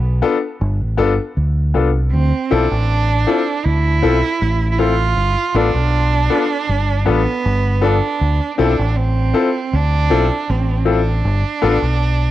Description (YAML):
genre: lovers rock reggae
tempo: 79 BPM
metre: 4/4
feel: straight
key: D dorian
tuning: A4 = 440 Hz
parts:
  - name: deep dub fingered electric bass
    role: bass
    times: 0.0-12.3 s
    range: G1 to D2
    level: -16 LUFS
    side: equal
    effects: none
  - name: clear concert grand piano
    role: accompaniment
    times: 0.2-11.8 s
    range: B3 to A4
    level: -18 LUFS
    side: left 6 dB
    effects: cassette tape
  - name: rich cello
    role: melody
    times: 2.1-12.3 s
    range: B3 to F4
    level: -20 LUFS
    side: right 6 dB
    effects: cassette tape, tape echo
room: light reverb, small room ambience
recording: home recording on cassette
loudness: -14 LUFS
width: side -14 dB against mid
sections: 0.0-12.3 A section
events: none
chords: 0.0 G7; 2.1 Dm7; 5.2 G7; 8.2 Dm7; 11.2 G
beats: 0.60 1.36 | 2.12 2.88 3.64 4.40 | 5.16 5.92 6.68 7.44 | 8.20 8.96 9.72 10.47 | 11.23 11.99